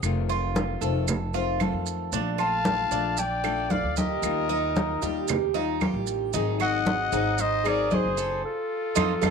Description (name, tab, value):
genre	latin, Cuban son and guajira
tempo	114 BPM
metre	4/4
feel	straight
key	Bb major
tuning	A4 = 440 Hz
part	flamenco guitar	accompaniment	0.0-9.3 s	C3 to Ab4	-31 LUFS	left 13 dB	none
part	upright bass	bass	0.0-9.3 s	F1 to F2	-31 LUFS	right 1 dB	none
part	claves	percussion	0.0-9.3 s	none	-33 LUFS	right 18 dB	none
part	congas	percussion	0.0-9.3 s	none	-29 LUFS	equal	none
part	maracas	percussion	0.0-9.3 s	none	-35 LUFS	right 17 dB	none
part	Cuban tres	arpeggios	0.3-9.3 s	D4 to Eb5	-30 LUFS	right 12 dB	none
part	warm clarinet	melody	2.4-9.3 s	A4 to A5	-27 LUFS	equal	none
part	growling trumpet	second line	2.4-9.3 s	F4 to F5	-34 LUFS	left 11 dB	none
room	moderate spring reverb, RT60 1.8 s, studio reverb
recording	1960s-style stereo with parts hard left and right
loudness	-23 LUFS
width	side -6 dB against mid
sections	0.0-9.3 A section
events	band accent 8.4-9.3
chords	0.0 F7; 2.1 Bbmaj7; 4.2 Ebadd9; 6.3 Ab7; 8.4 F7